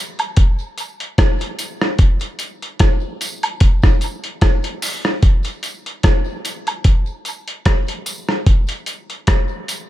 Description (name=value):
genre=reggae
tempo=74 BPM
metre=4/4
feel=swing 56% on 16ths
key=none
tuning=none
part: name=dusty soul sampler-style drum kit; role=drums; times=0.2-9.9 s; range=hi-hat, kick drum, rim click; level=-15 LUFS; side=equal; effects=overdrive
part: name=woodblock and tambourine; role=percussion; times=0.2-9.9 s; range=none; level=-27 LUFS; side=right 1 dB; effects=tape echo
room=little or no reverb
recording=dark, warm production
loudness=-15 LUFS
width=side -15 dB against mid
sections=0.0-9.9 A section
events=none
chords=none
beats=0.37 1.18 | 1.99 2.80 3.61 4.42 | 5.23 6.04 6.85 7.66 | 8.46 9.28